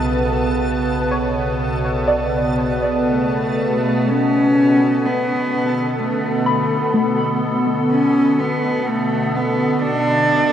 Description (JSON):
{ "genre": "ambient", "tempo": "62 BPM", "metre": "4/4", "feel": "straight", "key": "B minor", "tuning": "A4 = 444 Hz", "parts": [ { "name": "evolving wavetable pad", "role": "sustained chords", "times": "0.0-10.5 s", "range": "B2 to B4", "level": "-19 LUFS", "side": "right 1 dB", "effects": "chorus, built-in reverb" }, { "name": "soft round pluck", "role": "arpeggios", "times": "0.0-10.5 s", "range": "A3 to B5", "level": "-24 LUFS", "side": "left 1 dB", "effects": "lush chorus, tape echo" }, { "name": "round analog bass", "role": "bass", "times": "0.0-4.0 s", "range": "B1", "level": "-27 LUFS", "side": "equal", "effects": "none" }, { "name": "backwards swelling texture", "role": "texture", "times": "0.0-4.1 s", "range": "A4 to A5", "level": "-30 LUFS", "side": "right 1 dB", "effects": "built-in reverb" }, { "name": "warm cello", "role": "melody", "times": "3.1-10.5 s", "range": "A3 to D4", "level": "-18 LUFS", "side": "left 1 dB", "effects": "tape echo" } ], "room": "wet huge ambient reverb, RT60 8.0 s", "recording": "in a vast, echoing space, nothing above 10.8 kHz", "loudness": "-16 LUFS", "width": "side -10 dB against mid", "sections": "0.0-4.1 A section; 4.1-10.5 B section", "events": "none", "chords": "0.0 Bm9" }